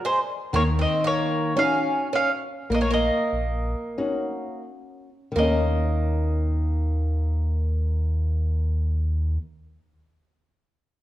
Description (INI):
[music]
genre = fado-style ballad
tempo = 42-62 BPM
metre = 4/4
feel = rubato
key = Eb minor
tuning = A4 = 440 Hz
[part]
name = mandolin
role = melody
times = 0.0-9.4 s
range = C5 to F5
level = -26 LUFS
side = equal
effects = none
[part]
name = flamenco guitar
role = accompaniment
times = 0.0-9.5 s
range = Eb3 to D5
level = -29 LUFS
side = left 2 dB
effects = none
[part]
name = picked twelve-string acoustic guitar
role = second line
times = 0.1-9.4 s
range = Ab3 to Db4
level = -29 LUFS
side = right 2 dB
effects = none
[part]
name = sub bass with octave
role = bass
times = 0.5-9.4 s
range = Bb1 to Eb2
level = -23 LUFS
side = equal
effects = tube saturation
[sound]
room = moderate recital hall reverb, RT60 1.4 s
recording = worn, warbling old tape, cassette tape, warbly pitch drift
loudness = -22 LUFS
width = side -14 dB against mid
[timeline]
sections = 0.0-5.4 A section; 5.4-10.9 B section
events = slowing down 0.0-5.4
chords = 0.0 Bb7; 0.5 Ebm7; 5.4 Eb5